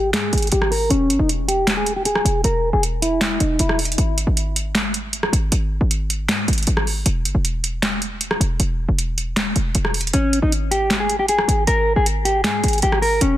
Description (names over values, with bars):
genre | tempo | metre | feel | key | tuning
hip hop, trap | 156 BPM | 4/4 | half-time | unclear | A4 = 438 Hz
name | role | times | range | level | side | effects
mellow electric guitar | melody | 0.0-3.8, 10.1-13.4 s | C#4 to A#4 | -20 LUFS | left 1 dB | low-pass filter, ping-pong delay
short 808-style bass | bass | 0.0-13.4 s | E1 to G#2 | -21 LUFS | equal | none
booming analog drum machine | drums | 0.1-13.3 s | handclaps, hi-hat, rim click, snare drum | -21 LUFS | equal | overdrive
room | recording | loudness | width
little or no reverb | dense, heavily limited modern master | -17 LUFS | side -13 dB against mid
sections
0.0-13.4 A section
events
none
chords
0.0 N.C.; 0.9 E; 4.0 N.C.